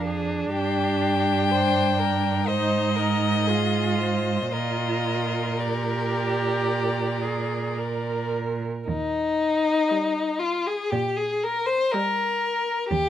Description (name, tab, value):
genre	classical, slow romantic movement for string quartet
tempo	53-63 BPM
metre	4/4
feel	rubato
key	Eb major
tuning	A4 = 442 Hz
part	rich violin	melody	0.0-12.7 s	D5 to G5	-28 LUFS	left 7 dB	none
part	rich violin	second line	0.0-13.1 s	Eb4 to C5	-26 LUFS	left 3 dB	none
part	rich viola	accompaniment	0.0-12.7 s	G3 to Bb4	-28 LUFS	right 3 dB	none
part	rich cello	bass	0.0-13.1 s	Eb2 to Bb2	-26 LUFS	right 4 dB	none
room	little or no reverb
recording	close, detailed microphones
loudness	-22 LUFS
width	side -10 dB against mid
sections	0.0-8.9 A section; 8.9-13.1 A section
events	none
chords	0.0 Ddim; 0.5 Gmadd11; 2.5 Fm7/Ab; 4.5 Bb; 8.9 Eb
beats	| 0.54 1.52 2.48 3.48 | 4.53 5.59 6.67 7.78 | 8.88 9.89 10.91 11.92 | 12.89